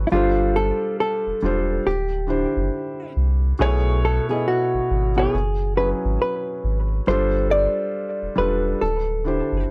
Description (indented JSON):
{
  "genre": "hip hop",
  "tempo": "69 BPM",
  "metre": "4/4",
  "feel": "swing 62% on 16ths",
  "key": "unclear",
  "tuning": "A4 = 440 Hz",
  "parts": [
    { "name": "felt-muted upright piano", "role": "accompaniment", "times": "0.0-9.7 s", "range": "B2 to D#5", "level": "-27 LUFS", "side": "equal", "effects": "none" },
    { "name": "soft dub sub bass", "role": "bass", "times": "0.0-9.7 s", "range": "D1 to C2", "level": "-25 LUFS", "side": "equal", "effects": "none" },
    { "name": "hollow-body jazz guitar", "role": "melody", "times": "0.1-9.6 s", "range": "E4 to D5", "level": "-25 LUFS", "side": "equal", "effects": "analog delay" }
  ],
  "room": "light reverb",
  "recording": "dry, gritty hardware recording",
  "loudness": "-22 LUFS",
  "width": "mono",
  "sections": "0.0-9.7 A section",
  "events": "none",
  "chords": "0.1 G9sus4; 1.9 D9sus4; 3.6 B9sus4; 5.3 F#9sus4; 7.1 G9sus4; 8.8 D9sus4",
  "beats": "| 0.12 0.98 1.85 2.72 | 3.59 4.46 5.33 6.20 | 7.07 7.94 8.81 9.68"
}